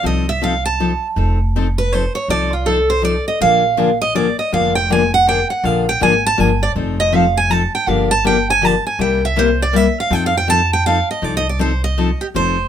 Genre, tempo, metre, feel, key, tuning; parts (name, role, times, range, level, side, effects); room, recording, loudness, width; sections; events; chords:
acoustic string swing (jazz manouche); 161 BPM; 3/4; swing 62% on 8ths; F mixolydian; A4 = 440 Hz
picked steel-string acoustic guitar; melody; 0.0-12.7 s; F4 to A5; -16 LUFS; right 3 dB
picked steel-string acoustic guitar; accompaniment; 0.0-12.6 s; C3 to A4; -18 LUFS; left 6 dB
upright bass; bass; 0.0-12.7 s; F1 to F2; -20 LUFS; equal
light reverb; minimal, uncompressed stereo recording; -14 LUFS; side -9 dB against mid
0.0-12.3 A section
steel-string acoustic guitar solo 0.0-12.3
0.0 F7; 3.4 Bb7; 6.8 F7; 7.9 Gm7; 9.0 C7; 10.1 F7